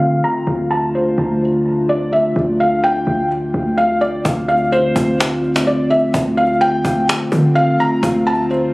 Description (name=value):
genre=hip hop, atmospheric cloud-rap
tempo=127 BPM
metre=4/4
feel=half-time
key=D minor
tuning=A4 = 440 Hz
part: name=felt-muted upright piano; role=melody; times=0.0-8.7 s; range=C5 to Bb5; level=-17 LUFS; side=equal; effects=low-pass filter, tape echo
part: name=dark analog pad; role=sustained chords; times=0.0-8.7 s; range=D3 to F4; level=-18 LUFS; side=equal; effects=chorus, low-pass filter
part: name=warm 808-style bass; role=bass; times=0.0-8.7 s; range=D2 to D3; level=-22 LUFS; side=equal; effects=none
part: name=cajon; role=drums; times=4.2-8.6 s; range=none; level=-19 LUFS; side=equal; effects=none
room=light reverb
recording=recorded on a phone in the room, studio reverb, compression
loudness=-14 LUFS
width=side -22 dB against mid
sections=0.0-4.2 A section; 4.2-8.7 B section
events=filter sweep 0.0-4.2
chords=0.0 Dm7